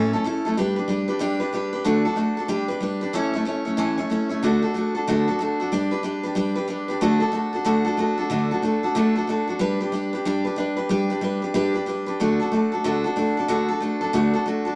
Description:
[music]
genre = rock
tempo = 186 BPM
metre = 4/4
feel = swing 62% on 8ths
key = D major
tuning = A4 = 440 Hz
[part]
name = picked steel-string acoustic guitar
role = solo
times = 0.0-14.8 s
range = A2 to C#5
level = -23 LUFS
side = equal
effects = none
[sound]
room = moderate studio reverb, RT60 0.8 s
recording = none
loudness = -23 LUFS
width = mono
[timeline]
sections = 0.0-4.4 A section; 4.4-14.8 B section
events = none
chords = 0.0 A; 0.6 G; 1.9 D; 2.5 G; 3.1 A; 4.4 D; 5.7 G; 7.0 D; 9.6 G; 12.2 D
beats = 0.25 | 0.57 0.89 1.21 1.53 | 1.86 2.18 2.50 2.82 | 3.14 3.47 3.79 4.11 | 4.43 4.75 5.08 5.40 | 5.72 6.05 6.37 6.69 | 7.01 7.34 7.66 7.99 | 8.31 8.63 8.96 9.28 | 9.60 9.93 10.25 10.57 | 10.90 11.22 11.55 11.87 | 12.19 12.52 12.84 13.17 | 13.49 13.81 14.14 14.46

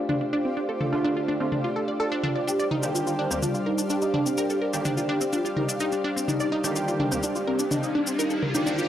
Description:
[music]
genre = melodic techno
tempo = 126 BPM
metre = 4/4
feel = straight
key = unclear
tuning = A4 = 440 Hz
[part]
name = sweeping resonant pad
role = sustained chords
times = 0.0-8.9 s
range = G3 to G4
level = -30 LUFS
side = right 1 dB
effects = chorus, phaser
[part]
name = wide unison pluck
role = arpeggios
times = 0.0-8.8 s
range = C4 to D5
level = -28 LUFS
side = equal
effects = analog delay
[part]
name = granular cloud pad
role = texture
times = 0.0-8.9 s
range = G4 to F5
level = -32 LUFS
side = equal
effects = built-in reverb
[part]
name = electronic toms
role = drums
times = 0.1-8.5 s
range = none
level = -32 LUFS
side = equal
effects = overdrive, low-pass filter on cymbals, low-pass filter on toms, low-pass filter on room
[part]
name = sync-sweep polysynth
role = stabs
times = 0.9-8.9 s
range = D2 to G4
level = -32 LUFS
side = right 2 dB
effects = chorus, analog delay
[part]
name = fat analog lead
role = melody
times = 2.5-8.7 s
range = C4 to G4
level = -30 LUFS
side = left 1 dB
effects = ensemble chorus, tape echo
[part]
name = cabasa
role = percussion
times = 2.5-8.9 s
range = none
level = -33 LUFS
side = left 2 dB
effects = none
[part]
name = riser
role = sound effects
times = 7.1-8.9 s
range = none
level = -33 LUFS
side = left 2 dB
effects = none
[sound]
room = moderate lush hall reverb, RT60 2.2 s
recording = dry, gritty hardware recording, transformer saturation, cassette tape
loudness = -23 LUFS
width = side -11 dB against mid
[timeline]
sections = 0.0-8.9 A section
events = riser 7.1-8.9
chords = 0.0 Dm; 2.5 Eb/D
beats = 0.09 | 0.57 1.04 1.52 2.00 | 2.47 2.95 3.42 3.90 | 4.38 4.85 5.33 5.81 | 6.28 6.76 7.23 7.71 | 8.19 8.66

